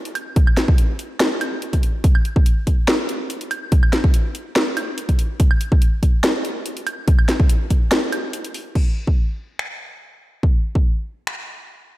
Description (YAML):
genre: future bass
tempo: 143 BPM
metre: 4/4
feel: half-time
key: none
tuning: none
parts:
  - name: trap drum kit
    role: drums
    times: 0.1-11.4 s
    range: crash cymbal, finger snaps, hi-hat, snare drum, woodblock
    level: -22 LUFS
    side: equal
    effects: overdrive
  - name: electronic kick drum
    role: drums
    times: 0.4-10.8 s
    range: none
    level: -15 LUFS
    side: equal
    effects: none
room: light reverb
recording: none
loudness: -17 LUFS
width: side -17 dB against mid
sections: 0.0-8.8 A section; 8.8-12.0 B section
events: drop 0.0-8.8; break 8.3-8.8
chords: none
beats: | 0.36 0.78 1.20 1.62 | 2.04 2.46 2.88 3.30 | 3.72 4.14 4.56 4.98 | 5.40 5.82 6.24 6.66 | 7.08 7.50 7.92 8.34 | 8.75 9.17 9.59 10.01 | 10.43 10.85 11.27